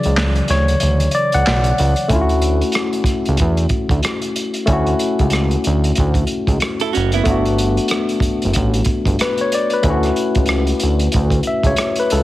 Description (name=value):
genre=R&B, neo-soul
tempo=93 BPM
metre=4/4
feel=swing 61% on 16ths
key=D major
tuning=A4 = 440 Hz
part: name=barky tine electric piano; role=accompaniment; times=0.0-12.2 s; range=C#3 to F#5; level=-18 LUFS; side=left 2 dB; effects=overdrive
part: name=crunchy breakbeat drum kit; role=drums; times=0.0-12.2 s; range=handclaps, hi-hat, kick drum, rim click, snare drum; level=-20 LUFS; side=right 1 dB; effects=none
part: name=fat analog bass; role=bass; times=0.1-12.2 s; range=F#1 to E2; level=-17 LUFS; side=right 1 dB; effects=none
part: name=vintage hollow-body jazz guitar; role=second line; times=6.8-7.4 s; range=B3 to A4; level=-21 LUFS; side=right 10 dB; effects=none
room=light reverb, studio ambience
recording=heavily compressed radio sound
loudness=-14 LUFS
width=side -16 dB against mid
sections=0.0-2.1 A section; 2.1-12.2 B section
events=break 0.0-2.1; tine electric piano solo 0.0-2.1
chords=0.0 Dmaj9; 7.3 Gmaj9; 9.8 Dmaj9